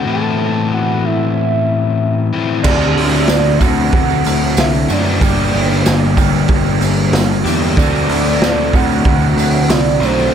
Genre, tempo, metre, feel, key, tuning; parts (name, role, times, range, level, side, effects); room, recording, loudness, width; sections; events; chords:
rock, shoegaze and dream pop; 94 BPM; 4/4; straight; D mixolydian; A4 = 440 Hz
soft octave-layered synth lead; melody; 0.0-10.3 s; C5 to A5; -20 LUFS; right 3 dB; chorus, phaser, tape echo
crunchy overdriven guitar; riff; 0.0-10.3 s; G2 to G4; -16 LUFS; left 5 dB; lush chorus
raw garage guitar; riff; 2.6-10.3 s; G2 to A4; -20 LUFS; right 14 dB; overdrive, reverse reverb
growling picked electric bass; bass; 2.6-10.3 s; G1 to F#2; -19 LUFS; right 1 dB; overdrive
raw garage drum kit; drums; 2.6-10.2 s; crash cymbal, hi-hat, kick drum, snare drum; -16 LUFS; right 1 dB
tambourine; percussion; 2.7-10.3 s; -31 LUFS; right 19 dB
light reverb, small room ambience; -12 LUFS; side -8 dB against mid
0.0-10.3 A section
0.1 Am; 2.6 D7; 5.2 Gm; 7.8 D7